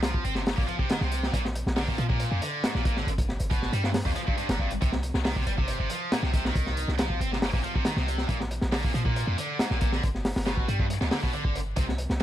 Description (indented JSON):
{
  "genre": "breakbeat, breaks",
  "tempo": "138 BPM",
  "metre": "4/4",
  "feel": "straight",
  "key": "C minor",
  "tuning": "A4 = 440 Hz",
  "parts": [
    { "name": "heavy high-gain guitar", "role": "riff", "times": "0.0-12.2 s", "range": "F2 to C4", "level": "-31 LUFS", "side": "right 1 dB", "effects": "distortion, ping-pong delay" },
    { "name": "warm 808-style bass", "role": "bass", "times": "0.0-12.2 s", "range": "G1 to Bb2", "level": "-29 LUFS", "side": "equal", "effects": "none" },
    { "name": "crunchy breakbeat drum kit", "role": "drums", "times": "0.0-12.2 s", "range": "hi-hat, kick drum, snare drum", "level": "-28 LUFS", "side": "equal", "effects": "none" }
  ],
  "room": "small room ambience",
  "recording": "vinyl crackle",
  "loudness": "-25 LUFS",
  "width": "side -12 dB against mid",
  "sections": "0.0-12.2 A section",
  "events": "none",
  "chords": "0.0 C5; 1.3 Bb; 3.1 N.C.; 4.8 Cm; 8.3 Bb; 10.0 G"
}